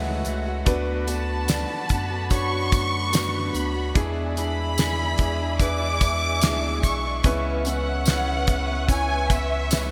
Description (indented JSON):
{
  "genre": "pop ballad",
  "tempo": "73 BPM",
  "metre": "4/4",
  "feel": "straight",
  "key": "unclear",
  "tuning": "A4 = 440 Hz",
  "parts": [
    { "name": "warm concert grand piano", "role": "accompaniment", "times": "0.0-9.9 s", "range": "C#3 to A5", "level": "-33 LUFS", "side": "equal", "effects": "subtle chorus" },
    { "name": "muted studio string section", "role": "sustained chords", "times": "0.0-9.9 s", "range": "D4 to C#6", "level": "-35 LUFS", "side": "equal", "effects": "none" },
    { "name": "picked steel-string acoustic guitar", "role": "arpeggios", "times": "0.0-9.9 s", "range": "E2 to F#4", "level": "-36 LUFS", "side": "equal", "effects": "delay" },
    { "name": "saturated sub bass", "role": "bass", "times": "0.0-9.9 s", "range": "B1 to F#2", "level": "-30 LUFS", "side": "equal", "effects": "none" },
    { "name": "tambourine", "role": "percussion", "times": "0.2-9.9 s", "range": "none", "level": "-38 LUFS", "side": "equal", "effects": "none" },
    { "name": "damped 70s drum kit", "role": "drums", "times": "0.3-9.9 s", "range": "hi-hat, kick drum, snare drum", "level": "-26 LUFS", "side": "equal", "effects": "gated reverb" },
    { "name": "rich studio violin section", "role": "melody", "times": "1.1-9.9 s", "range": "E5 to D6", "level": "-30 LUFS", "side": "equal", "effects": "none" }
  ],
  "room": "moderate lush hall reverb, RT60 2.7 s",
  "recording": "bright 1980s-style digital production",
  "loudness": "-24 LUFS",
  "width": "mono",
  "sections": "0.0-9.9 A section",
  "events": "grand piano fill 0.0-0.7",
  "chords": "0.0 F#m7; 0.7 D6; 4.0 E7; 7.2 C#m7"
}